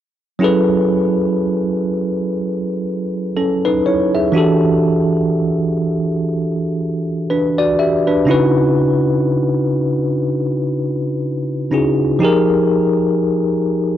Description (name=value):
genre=R&B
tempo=61 BPM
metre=4/4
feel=swing 58% on 16ths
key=F# dorian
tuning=A4 = 440 Hz
part: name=bell-like tine electric piano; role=accompaniment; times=0.4-14.0 s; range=C#3 to E5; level=-14 LUFS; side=equal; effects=fast stereo tremolo
room=light reverb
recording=dry, gritty hardware recording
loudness=-14 LUFS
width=side -11 dB against mid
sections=0.4-14.0 A section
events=none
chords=0.4 F#m11; 4.3 Em11; 8.3 C#m11; 12.2 Fm11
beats=| 0.41 1.40 2.38 3.36 | 4.35 5.33 6.32 7.30 | 8.28 9.27 10.25 11.23 | 12.22 13.20